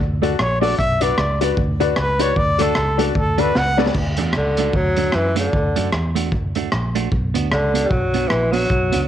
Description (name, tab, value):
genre	ska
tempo	152 BPM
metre	4/4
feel	swing 58% on 8ths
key	D major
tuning	A4 = 439 Hz
part	vintage muted fingered electric bass	bass	0.0-9.1 s	Bb1 to F#2	-22 LUFS	equal	none
part	clean electric guitar	accompaniment	0.2-9.1 s	A3 to B4	-26 LUFS	right 12 dB	none
part	warm upright piano	stabs	0.2-3.9 s	D4 to D5	-23 LUFS	left 10 dB	none
part	crunchy breakbeat drum kit	drums	0.2-9.0 s	crash cymbal, hi-hat, kick drum, rim click, snare drum	-23 LUFS	equal	none
part	breathy trumpet	melody	0.4-3.8 s	A4 to F#5	-21 LUFS	equal	none
part	breathy tenor saxophone	melody	4.4-9.1 s	D3 to G3	-20 LUFS	equal	slapback echo
room	light reverb, studio ambience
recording	1960s-style stereo with parts hard left and right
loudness	-16 LUFS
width	side -11 dB against mid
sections	0.0-3.9 A section; 3.9-9.1 B section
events	trumpet solo 0.0-3.9; drum fill 3.6-3.9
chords	0.0 D; 0.8 Bm; 2.4 D; 7.1 Bm